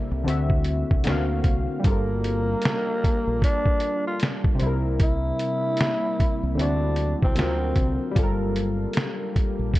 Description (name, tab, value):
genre	lo-fi hip hop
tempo	76 BPM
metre	4/4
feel	swing 60% on 16ths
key	G dorian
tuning	A4 = 438 Hz
part	warm analog keys	accompaniment	0.0-9.8 s	C3 to E#5	-28 LUFS	left 1 dB	chorus, low-pass filter
part	deep dark ambient pad	sustained chords	0.0-9.8 s	C3 to A5	-34 LUFS	equal	chorus, built-in reverb, low-pass filter
part	deep dub fingered electric bass	bass	0.1-9.7 s	G1 to D2	-26 LUFS	equal	none
part	lo-fi sampler-style drum kit	drums	0.3-9.8 s	hi-hat, kick drum, snare drum	-23 LUFS	equal	none
part	growling tenor saxophone	melody	1.9-8.1 s	Bb3 to F4	-27 LUFS	equal	low-pass filter
room	light reverb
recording	dark, warm production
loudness	-21 LUFS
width	side -17 dB against mid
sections	0.0-9.8 A section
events	none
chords	0.3 D9; 1.1 D7alt; 1.8 Gm9; 4.6 C7; 6.6 D9; 7.4 D7alt; 8.2 Gm9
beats	0.26 1.05 | 1.84 2.63 3.42 4.21 | 5.00 5.79 6.58 7.37 | 8.16 8.95 9.74